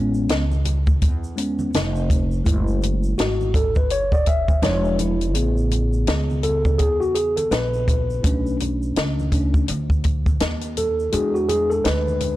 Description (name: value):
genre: hip hop, jazz-hop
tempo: 83 BPM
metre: 4/4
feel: swing 60% on 16ths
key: A major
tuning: A4 = 443 Hz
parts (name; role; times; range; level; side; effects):
- mellow tine electric piano; accompaniment; 0.0-12.4 s; C#3 to E5; -22 LUFS; equal; slow stereo tremolo
- upright bass; bass; 0.0-12.4 s; E1 to E2; -23 LUFS; equal; tube saturation
- egg shaker and congas; percussion; 0.1-12.4 s; none; -36 LUFS; right 3 dB; none
- compact cocktail drum kit; drums; 0.3-12.4 s; hi-hat, kick drum, snare drum; -21 LUFS; equal; none
room: light reverb, studio reverb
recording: blown-out, overdriven recording, overdrive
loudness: -18 LUFS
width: side -16 dB against mid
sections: 0.0-2.5 A section; 2.5-12.4 B section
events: tine electric piano solo 0.0-2.5, 2.5-12.4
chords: 0.0 Amaj9 (rootless); 2.5 F#m7; 4.6 E7b9; 5.4 Amaj9; 8.2 Bm9; 11.1 E9